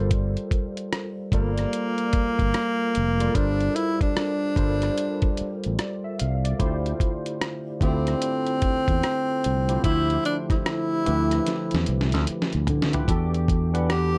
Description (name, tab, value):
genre	R&B, neo-soul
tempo	74 BPM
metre	4/4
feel	swing 62% on 16ths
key	unclear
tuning	A4 = 440 Hz
part	barky tine electric piano	accompaniment	0.0-14.2 s	D3 to F#5	-32 LUFS	equal	overdrive, ensemble chorus
part	fingered electric bass	bass	0.0-14.2 s	F1 to D3	-27 LUFS	equal	none
part	dusty soul sampler-style drum kit	drums	0.1-14.1 s	hi-hat, kick drum, rim click, snare drum, toms	-28 LUFS	equal	none
part	breathy tenor saxophone	melody	1.3-14.2 s	Bb3 to G4	-27 LUFS	equal	none
room	light reverb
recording	dark, warm production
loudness	-24 LUFS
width	mono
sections	0.0-13.1 A section; 13.1-14.2 B section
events	drum fill 11.5-13.1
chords	0.0 Gm11; 6.6 Dm11; 13.1 Em11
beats	| 0.11 0.92 1.73 2.54 | 3.35 4.16 4.97 5.78 | 6.59 7.40 8.21 9.03 | 9.84 10.65 11.46 12.27 | 13.08 13.89